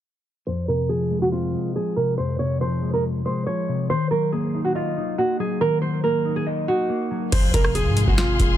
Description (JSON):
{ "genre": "hip hop, trap", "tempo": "140 BPM", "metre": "4/4", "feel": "half-time", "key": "F phrygian", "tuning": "A4 = 440 Hz", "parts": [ { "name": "nylon-string guitar", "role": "melody", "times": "0.5-8.6 s", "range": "F4 to Db5", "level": "-24 LUFS", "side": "right 2 dB", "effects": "low-pass filter" }, { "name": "mellow electric guitar", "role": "accompaniment", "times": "0.5-8.6 s", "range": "F2 to Eb5", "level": "-24 LUFS", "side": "left 2 dB", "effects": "wide subtle chorus, low-pass filter" }, { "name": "bright symphonic string section", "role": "sustained chords", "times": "7.3-8.6 s", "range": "Ab4 to C6", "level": "-30 LUFS", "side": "left 4 dB", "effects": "none" }, { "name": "warm 808-style bass", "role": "bass", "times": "7.3-8.6 s", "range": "Eb1 to Ab2", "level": "-23 LUFS", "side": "equal", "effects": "none" }, { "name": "booming analog drum machine", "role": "drums", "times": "7.3-8.6 s", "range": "crash cymbal, hi-hat, kick drum, rim click, snare drum", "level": "-20 LUFS", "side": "equal", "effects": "none" }, { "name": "impact", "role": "sound effects", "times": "7.3-8.6 s", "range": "none", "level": "-32 LUFS", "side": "equal", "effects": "none" } ], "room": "little or no reverb", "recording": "none", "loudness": "-20 LUFS", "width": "side -11 dB against mid", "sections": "0.5-7.3 A section; 7.3-8.6 B section", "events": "filter sweep 0.5-7.3; impact 7.3-8.6", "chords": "0.5 Fm; 3.9 Ebm; 7.3 Fm" }